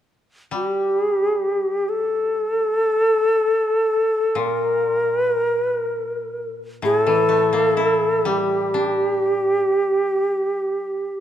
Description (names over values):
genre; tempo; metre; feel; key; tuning
japanese traditional, Japanese chamber music; free time; none; none; G kumoi; A4 = 440 Hz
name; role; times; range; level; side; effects
bright reedy shakuhachi; melody; 0.5-11.2 s; G4 to Bb4; -18 LUFS; equal; none
koto; accompaniment; 0.5-11.0 s; A2 to E4; -26 LUFS; left 4 dB; none
room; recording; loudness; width
light reverb; dark, warm production; -18 LUFS; side -10 dB against mid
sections
0.0-11.2 A section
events
none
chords
none